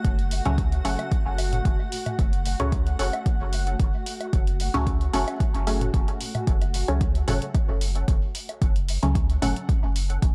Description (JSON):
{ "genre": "dub techno", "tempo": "112 BPM", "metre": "4/4", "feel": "straight", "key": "F# minor", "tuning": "A4 = 440 Hz", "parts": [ { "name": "granular cloud pad", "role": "sustained chords", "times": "0.0-6.5 s", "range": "A3 to F#5", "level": "-37 LUFS", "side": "equal", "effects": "built-in reverb, sidechain pumping" }, { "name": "warm sub bass", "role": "bass", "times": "0.0-10.3 s", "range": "F#1 to C#2", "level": "-28 LUFS", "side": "equal", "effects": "sidechain pumping" }, { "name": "electronic hi-hat", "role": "drums", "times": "0.0-10.3 s", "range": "none", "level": "-38 LUFS", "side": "equal", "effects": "none" }, { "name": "electronic kick drum", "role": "drums", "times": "0.0-10.3 s", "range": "none", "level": "-26 LUFS", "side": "equal", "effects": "overdrive" }, { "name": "filtered dub chord stab", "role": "stabs", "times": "0.5-10.3 s", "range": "C#3 to C#4", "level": "-32 LUFS", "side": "equal", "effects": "phaser, sidechain pumping, dub echo" }, { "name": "electronic toms and woodblock", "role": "percussion", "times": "0.5-9.5 s", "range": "none", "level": "-37 LUFS", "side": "equal", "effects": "sidechain pumping on toms, sidechain pumping on perc, dub echo" }, { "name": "wavetable chord stab", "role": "riff", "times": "0.8-9.5 s", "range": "C#4 to F#5", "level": "-39 LUFS", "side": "equal", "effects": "sidechain pumping, dub echo" } ], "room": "digital ambience", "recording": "echo-heavy mix, vinyl crackle, faint mains hum", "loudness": "-24 LUFS", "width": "mono", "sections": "0.0-6.5 A section; 6.5-10.3 A section", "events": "none", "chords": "0.0 F#m", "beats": "| 0.05 0.58 1.12 1.65 | 2.19 2.72 3.26 3.80 | 4.33 4.87 5.40 5.94 | 6.47 7.01 7.55 8.08 | 8.62 9.15 9.69 10.22" }